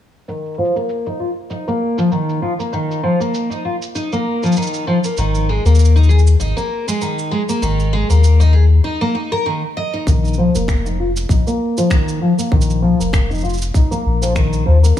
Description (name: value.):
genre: folktronica.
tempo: 98 BPM.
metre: 4/4.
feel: swing 56% on 16ths.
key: unclear.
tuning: A4 = 440 Hz.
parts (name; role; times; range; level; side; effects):
picked twelve-string acoustic guitar; arpeggios; 0.3-15.0 s; Eb3 to Eb5; -18 LUFS; equal; low-pass filter, tape echo.
electronic cabasa and finger snaps; drums; 0.3-15.0 s; none; -28 LUFS; right 2 dB; low-pass filter on perc, studio reverb, low-pass filter on snare.
warm sub bass; bass; 5.2-15.0 s; F1 to Eb2; -13 LUFS; left 2 dB; tube saturation.
electronic kick drum; drums; 10.1-15.0 s; none; -15 LUFS; left 1 dB; studio reverb.
room: digital ambience.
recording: small room ambience.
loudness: -14 LUFS.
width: side -11 dB against mid.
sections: 0.3-10.1 A section; 10.1-15.0 B section.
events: filter sweep on twelve-string acoustic guitar 0.3-10.1, 10.1-15.0; break 8.9-10.1.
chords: 0.3 Bbsus4; 5.2 Absus2; 10.1 Bbsus4.